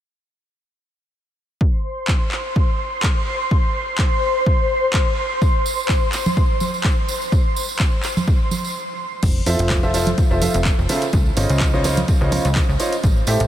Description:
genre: piano house.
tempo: 126 BPM.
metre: 4/4.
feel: swing 54% on 16ths.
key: F major.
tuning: A4 = 439 Hz.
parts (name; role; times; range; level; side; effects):
analog string pad; sustained chords; 1.6-9.2 s; C5 to C6; -23 LUFS; left 1 dB; ensemble chorus, sidechain pumping.
electronic kick drum; drums; 1.6-13.1 s; none; -18 LUFS; equal; none.
punchy analog drum machine; drums; 2.1-13.5 s; crash cymbal, handclaps, hi-hat; -27 LUFS; equal; none.
tambourine and congas; percussion; 5.4-13.5 s; none; -27 LUFS; right 3 dB; none.
plucky analog bass; bass; 9.2-13.5 s; F1 to A2; -20 LUFS; equal; sidechain pumping.
clear baby grand piano; riff; 9.5-13.5 s; Db3 to E5; -21 LUFS; right 1 dB; sidechain pumping, tape echo.
room: moderate huge ambient reverb, RT60 7.2 s.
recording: dreamy mix soaked in reverb.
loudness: -16 LUFS.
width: side -11 dB against mid.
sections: 1.6-9.2 A section; 9.2-13.5 B section.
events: break 8.8-9.2.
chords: 1.6 N.C.; 9.2 Fmaj7; 11.1 Dbmaj9.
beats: | 1.61 2.08 2.56 3.04 | 3.51 3.99 4.46 4.94 | 5.42 5.89 6.37 6.85 | 7.32 7.80 8.27 8.75 | 9.23 9.70 10.18 10.65 | 11.13 11.61 12.08 12.56 | 13.04.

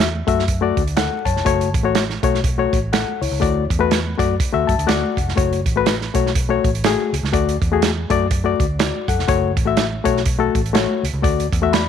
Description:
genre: uptempo 1960s-style soul.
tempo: 123 BPM.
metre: 4/4.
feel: swing 59% on 8ths.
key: unclear.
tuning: A4 = 440 Hz.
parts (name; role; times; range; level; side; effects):
barky reed electric piano; accompaniment; 0.0-11.9 s; A3 to B5; -19 LUFS; left 9 dB; overdrive.
vintage muted fingered electric bass; bass; 0.0-11.9 s; F1 to F#2; -23 LUFS; equal; none.
natural country drum kit; drums; 0.0-11.9 s; hi-hat, kick drum, snare drum; -21 LUFS; right 3 dB; none.
room: light reverb, small room reverb.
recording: 1960s-style stereo, vinyl crackle.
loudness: -16 LUFS.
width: side -8 dB against mid.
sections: 0.0-11.9 A section.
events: reed electric piano fill 4.4-5.4.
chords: 0.0 D; 1.5 F#m; 3.4 D; 5.4 F#m; 7.3 D; 9.3 F#m; 11.2 D.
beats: 0.48 0.97 | 1.46 1.95 2.44 2.93 | 3.42 3.91 4.40 4.88 | 5.37 5.86 6.35 6.84 | 7.33 7.82 8.31 8.80 | 9.29 9.78 10.26 10.75 | 11.24 11.73.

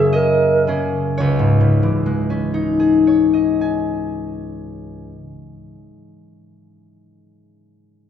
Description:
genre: classical, impressionist duo for alto flute and harp.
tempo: 57 BPM.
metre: 3/4.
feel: rubato.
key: C# minor.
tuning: A4 = 445 Hz.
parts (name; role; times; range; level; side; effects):
wooden-headed alto flute; melody; 0.0-0.7 s; G#4 to A#4; -17 LUFS; right 2 dB; none.
concert harp; accompaniment; 0.0-5.8 s; C#2 to G#5; -16 LUFS; left 2 dB; none.
room: wet recital hall reverb, RT60 1.8 s.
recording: heard from further back in the room, nothing above 7.8 kHz.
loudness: -15 LUFS.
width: side -9 dB against mid.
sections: 0.0-1.2 A section; 1.2-4.3 B section.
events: slowing down 0.0-1.2.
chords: 0.0 F#9; 1.2 C#madd9.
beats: 0.15 | 1.20 2.24 3.30.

